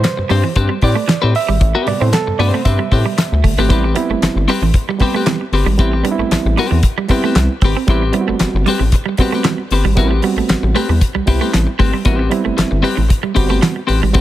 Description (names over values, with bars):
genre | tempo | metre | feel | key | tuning
funk | 115 BPM | 4/4 | straight | A dorian | A4 = 440 Hz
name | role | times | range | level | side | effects
clean electric guitar | accompaniment | 0.0-14.2 s | C4 to C5 | -20 LUFS | left 6 dB | spring reverb
clean electric guitar | riff | 0.0-14.1 s | E3 to C4 | -22 LUFS | right 9 dB | none
overdriven reed electric piano | stabs | 0.0-14.2 s | B2 to E5 | -21 LUFS | right 5 dB | none
rubbery square bass | bass | 0.0-14.2 s | G1 to A2 | -16 LUFS | equal | none
damped 70s drum kit | drums | 0.0-14.2 s | handclaps, hi-hat, kick drum, snare drum | -16 LUFS | left 1 dB | none
room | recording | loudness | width
small room ambience | none | -12 LUFS | side -14 dB against mid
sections
0.0-3.7 A section; 3.7-14.2 B section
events
reed electric piano solo 0.0-3.7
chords
0.0 Am9